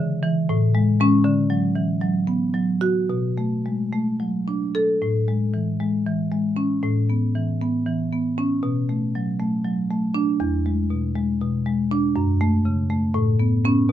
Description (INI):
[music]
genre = classical, contemporary piece for solo marimba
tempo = 213-244 BPM (eighths)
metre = 7/8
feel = rubato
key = A major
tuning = A4 = 440 Hz
[part]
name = marimba with medium mallets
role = solo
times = 0.0-13.9 s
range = E2 to A4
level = -19 LUFS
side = equal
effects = none
[sound]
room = moderate studio ambience, RT60 0.5 s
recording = none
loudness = -19 LUFS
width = side -11 dB against mid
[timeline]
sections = 0.0-5.0 A section; 5.0-13.9 B section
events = none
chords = 0.5 Amaj7; 1.2 D69; 3.1 Bm7; 5.0 Amaj7; 6.8 C#m7/A; 8.6 Bm7; 10.4 E7; 12.2 F#m; 13.1 Aadd9